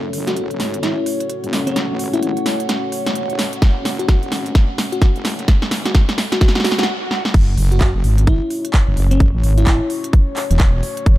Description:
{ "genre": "bass house", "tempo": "129 BPM", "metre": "4/4", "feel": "swing 61% on 16ths", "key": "F# minor", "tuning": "A4 = 441 Hz", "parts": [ { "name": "dark analog pad", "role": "sustained chords", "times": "0.0-11.2 s", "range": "A3 to C#5", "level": "-26 LUFS", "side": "left 2 dB", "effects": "chorus, phaser, sidechain pumping" }, { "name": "wobble bass", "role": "bass", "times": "0.0-11.2 s", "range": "E1 to A1", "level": "-19 LUFS", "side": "equal", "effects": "chorus, tube saturation, sidechain pumping, high-pass filter" }, { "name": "warbly tape-like pad", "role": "texture", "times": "0.0-6.9 s", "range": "C#4 to F#5", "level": "-30 LUFS", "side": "right 1 dB", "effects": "chorus, built-in reverb, sidechain pumping" }, { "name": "big-room dance drum kit", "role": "drums", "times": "0.1-11.2 s", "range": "crash cymbal, handclaps, hi-hat, snare drum", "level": "-22 LUFS", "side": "right 1 dB", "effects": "none" }, { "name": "bell-like FM electric piano", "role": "melody", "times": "0.3-10.0 s", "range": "C#4 to F#4", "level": "-24 LUFS", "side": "left 1 dB", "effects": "chorus, tremolo, dub echo" }, { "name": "electronic kick drum", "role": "drums", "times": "3.6-11.2 s", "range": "none", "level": "-13 LUFS", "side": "equal", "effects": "none" }, { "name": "swell", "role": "sound effects", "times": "6.5-7.3 s", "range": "none", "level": "-27 LUFS", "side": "right 1 dB", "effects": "none" } ], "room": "little or no reverb", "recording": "dark, warm production", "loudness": "-15 LUFS", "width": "side -15 dB against mid", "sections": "0.0-7.3 A section; 7.3-11.2 B section", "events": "build-up 0.0-7.3; drum fill 0.0-6.9, 7.1; swell 6.5-7.3; stop 6.9-7.3; drop 7.3-11.2", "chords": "0.0 F#m" }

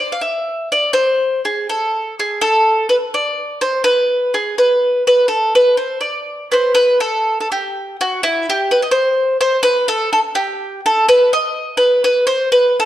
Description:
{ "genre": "italian folk", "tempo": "83 BPM (dotted quarters)", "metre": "6/8", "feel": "straight", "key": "unclear", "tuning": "A4 = 440 Hz", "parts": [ { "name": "bowl-back mandolin", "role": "solo", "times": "0.0-12.9 s", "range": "E4 to F5", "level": "-13 LUFS", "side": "equal", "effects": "none" } ], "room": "moderate recital hall reverb, RT60 1.4 s", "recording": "none", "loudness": "-13 LUFS", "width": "side -13 dB against mid", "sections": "0.0-6.7 A section; 6.7-12.9 B section", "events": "none", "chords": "none" }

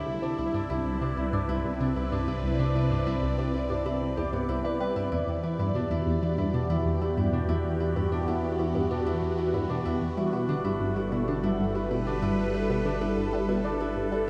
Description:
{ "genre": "ambient, sequencer-driven space music", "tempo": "95 BPM", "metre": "4/4", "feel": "straight", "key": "E minor", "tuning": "A4 = 442 Hz", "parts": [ { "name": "phased analog pad", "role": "sustained chords", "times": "0.0-14.3 s", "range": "C3 to D5", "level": "-32 LUFS", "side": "equal", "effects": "phaser, chorus" }, { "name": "Celtic harp", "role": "arpeggios", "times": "0.0-14.3 s", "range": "B3 to B4", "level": "-36 LUFS", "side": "equal", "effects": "tape echo" }, { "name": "warm sub bass", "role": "bass", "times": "0.0-14.3 s", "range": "G1 to E2", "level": "-37 LUFS", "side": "equal", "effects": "none" }, { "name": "resonant blip pluck", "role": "riff", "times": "0.1-14.3 s", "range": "C2 to G3", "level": "-33 LUFS", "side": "equal", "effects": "phaser, tape echo" } ], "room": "wet huge ambient reverb, RT60 8.2 s", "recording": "none", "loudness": "-28 LUFS", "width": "mono", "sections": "0.0-14.3 A section", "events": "none", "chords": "0.1 Cmaj7; 5.1 Em7; 10.2 Gmaj7" }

